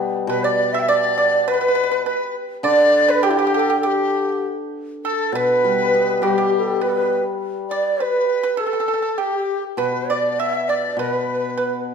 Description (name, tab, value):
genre	chinese traditional, Chinese chamber ensemble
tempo	102 BPM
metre	2/4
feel	rubato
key	unclear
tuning	A4 = 441 Hz
part	hammered dulcimer	accompaniment	0.0-11.9 s	B2 to B3	-25 LUFS	left 4 dB	none
part	breathy mellow xiao	melody	0.3-11.8 s	G4 to E5	-21 LUFS	right 3 dB	none
part	bright large dizi	second line	0.3-11.8 s	E4 to G5	-23 LUFS	left 6 dB	none
part	pipa	second line	0.3-11.8 s	G4 to E5	-24 LUFS	right 4 dB	none
room	wet recital hall reverb, RT60 1.4 s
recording	minimal, uncompressed stereo recording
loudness	-17 LUFS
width	side -6 dB against mid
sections	0.0-5.0 A section; 5.0-11.9 B section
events	none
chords	none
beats	| 0.30 0.91 | 1.50 2.08 | 2.66 3.25 | 3.84 4.44 | 5.05 5.65 | 6.24 6.83 | 7.42 8.01 | 8.59 9.18 | 9.79 10.39 | 10.98 11.57